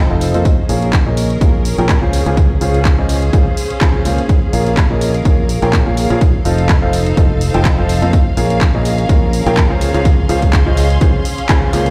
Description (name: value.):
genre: piano house.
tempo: 125 BPM.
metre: 4/4.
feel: swing 55% on 16ths.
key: Bb minor.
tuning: A4 = 440 Hz.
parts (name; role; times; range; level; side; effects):
clear concert grand piano; riff; 0.0-11.9 s; Db3 to Ab5; -21 LUFS; equal; sidechain pumping, low-pass filter, delay.
fingered electric bass; bass; 0.0-11.9 s; F1 to F2; -19 LUFS; equal; tube saturation, sidechain pumping.
clear symphonic string section; texture; 0.0-11.9 s; Db4 to C6; -26 LUFS; equal; sidechain pumping.
punchy analog drum machine; drums; 0.2-11.9 s; handclaps, hi-hat; -25 LUFS; equal; none.
electronic kick drum; drums; 0.5-11.6 s; none; -16 LUFS; equal; none.
room: studio reverb.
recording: played on a big sound system in a bare room, stone room reverb.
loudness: -13 LUFS.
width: mono.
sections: 0.0-11.9 A section.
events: band accent 11.5.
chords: 0.5 Bbm7; 2.1 Dbmaj7; 4.3 Bbm7; 6.2 F7; 8.1 Bbm7; 9.8 Dbmaj7.